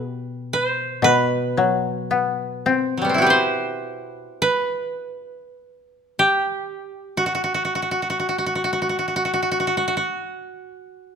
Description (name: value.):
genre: japanese traditional, Japanese chamber music.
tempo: free time.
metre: none.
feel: none.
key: unclear.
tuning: A4 = 440 Hz.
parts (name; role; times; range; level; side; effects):
koto; melody; 0.0-11.2 s; F#3 to C5; -20 LUFS; right 1 dB; none.
koto; accompaniment; 0.0-4.8 s; B2 to C4; -22 LUFS; left 5 dB; none.
room: light reverb.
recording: close, detailed microphones.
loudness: -19 LUFS.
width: side -6 dB against mid.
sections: 0.0-11.2 A section.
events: none.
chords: none.